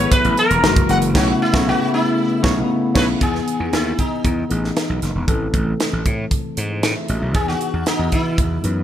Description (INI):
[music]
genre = polished 1980s jazz-funk pop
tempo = 116 BPM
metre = 4/4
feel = straight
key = E major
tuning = A4 = 440 Hz
[part]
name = sitar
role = melody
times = 0.0-8.8 s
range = D#4 to F#5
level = -21 LUFS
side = equal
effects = none
[part]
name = tine electric piano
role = accompaniment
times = 0.0-8.8 s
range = C#3 to E5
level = -22 LUFS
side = left 2 dB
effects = overdrive, lush chorus
[part]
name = dark studio string section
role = sustained chords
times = 0.0-3.2 s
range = F#3 to B4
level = -28 LUFS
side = left 1 dB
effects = none
[part]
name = gritty slap bass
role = bass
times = 0.0-8.8 s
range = E1 to E3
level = -21 LUFS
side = equal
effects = overdrive
[part]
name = crisp fusion drum kit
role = drums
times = 0.1-8.8 s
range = crash cymbal, hi-hat, kick drum, snare drum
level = -21 LUFS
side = right 1 dB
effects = gated reverb
[part]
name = warm horn section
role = second line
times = 1.1-3.1 s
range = A3 to C#5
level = -30 LUFS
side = right 4 dB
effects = none
[sound]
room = small room ambience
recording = none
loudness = -16 LUFS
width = side -10 dB against mid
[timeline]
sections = 0.0-3.2 A section; 3.2-8.8 B section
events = band accent 1.1-3.2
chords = 0.0 F#m11; 0.6 F#9; 1.1 B9sus4; 3.2 Emaj7; 5.3 Am; 7.3 Emaj7